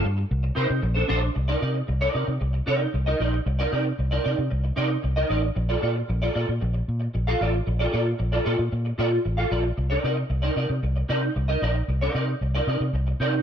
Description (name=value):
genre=disco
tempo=114 BPM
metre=4/4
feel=straight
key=C dorian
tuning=A4 = 441 Hz
part: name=semi-hollow electric guitar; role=accompaniment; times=0.0-13.4 s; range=D4 to F5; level=-26 LUFS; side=right 1 dB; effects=ensemble chorus
part: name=fingered electric bass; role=bass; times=0.1-13.4 s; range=A1 to C3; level=-24 LUFS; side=equal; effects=none
room=light reverb, digital ambience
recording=none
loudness=-22 LUFS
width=side -8 dB against mid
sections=0.0-1.4 A section; 1.4-13.4 B section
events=none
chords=0.3 Cm7; 0.8 Bbmaj9; 1.4 Cm9; 5.6 Bbmaj7; 9.8 Cm9